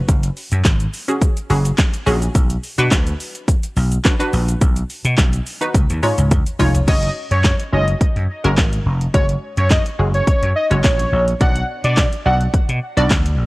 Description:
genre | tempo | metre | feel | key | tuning
dance-pop | 106 BPM | 4/4 | straight | F# major | A4 = 443 Hz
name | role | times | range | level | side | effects
punchy chord stab | accompaniment | 0.0-13.4 s | G#3 to D5 | -22 LUFS | equal | chorus, sidechain pumping
vintage slap bass | bass | 0.1-13.5 s | E#1 to B2 | -18 LUFS | equal | sidechain pumping
pop drum kit | drums | 0.1-13.4 s | crash cymbal, handclaps, hi-hat, kick drum, shaker, snare drum, toms | -17 LUFS | equal | overdrive
fat analog lead | melody | 6.9-12.4 s | C#5 to F#5 | -21 LUFS | equal | sidechain pumping, dub echo
room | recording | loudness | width
little or no reverb | worn, warbling old tape, cassette tape, warbly pitch drift | -15 LUFS | side -21 dB against mid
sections
0.0-6.9 A section; 6.9-13.5 B section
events
drum fill 5.7-6.9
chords
0.0 F#sus2; 2.4 Bm; 4.6 B; 5.7 C#add9; 6.9 F#sus2; 11.4 Bm

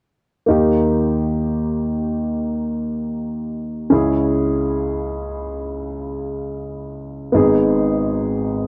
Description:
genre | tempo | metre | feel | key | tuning
pop | free time | none | none | unclear | A4 = 439 Hz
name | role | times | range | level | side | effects
warm baby grand piano | accompaniment | 0.5-8.7 s | G#1 to G#4 | -20 LUFS | equal | none
room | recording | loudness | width
light reverb | dry, close 1970s-style studio recording | -20 LUFS | mono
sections
0.5-8.7 A section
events
none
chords
0.5 D#; 3.9 C#m; 7.3 G#m

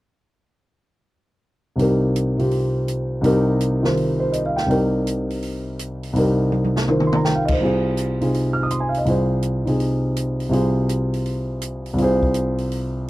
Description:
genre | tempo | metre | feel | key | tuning
modal jazz | 165 BPM | 4/4 | swing 66% on 8ths | C minor | A4 = 436 Hz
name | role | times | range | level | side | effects
warm grand piano | accompaniment | 1.8-13.1 s | C2 to F6 | -18 LUFS | equal | none
open jazz drum kit | drums | 1.8-12.8 s | crash cymbal, hi-hat, kick drum, snare drum, toms | -28 LUFS | equal | none
room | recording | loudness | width
light reverb | dry, close 1970s-style studio recording | -18 LUFS | side -17 dB against mid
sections
1.8-13.1 A section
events
drum fill 6.5-7.3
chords
1.8 Cm7; 7.6 Fm/C

